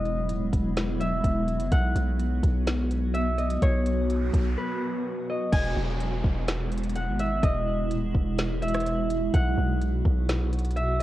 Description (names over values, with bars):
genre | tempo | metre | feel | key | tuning
hip hop, atmospheric cloud-rap | 126 BPM | 4/4 | half-time | unclear | A4 = 439 Hz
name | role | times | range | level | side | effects
concert harp | melody | 0.0-11.0 s | B4 to G#5 | -31 LUFS | equal | low-pass filter, ping-pong delay
granular cloud pad | sustained chords | 0.0-11.0 s | B2 to F#4 | -30 LUFS | equal | built-in reverb, sidechain pumping
long sustained 808-style bass | bass | 0.0-11.0 s | D#1 to B1 | -27 LUFS | equal | none
smooth R&B drum kit | drums | 0.1-11.0 s | crash cymbal, hi-hat, kick drum, rim click, snare drum | -27 LUFS | equal | none
noise sweep and downlifter | sound effects | 3.9-9.3 s | none | -40 LUFS | equal | none
room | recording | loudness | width
digital ambience | worn, warbling old tape, cassette tape, warbly pitch drift | -24 LUFS | side -15 dB against mid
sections
0.0-5.5 A section; 5.5-11.0 B section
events
noise sweep 3.9-5.5; break 4.6-5.5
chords
0.0 Emaj7; 1.7 B5; 5.5 Emaj7; 9.3 B5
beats
0.29 0.77 1.24 | 1.72 2.19 2.67 3.15 | 3.62 4.10 4.58 5.05 | 5.53 6.00 6.48 6.96 | 7.43 7.91 8.38 8.86 | 9.34 9.81 10.29 10.77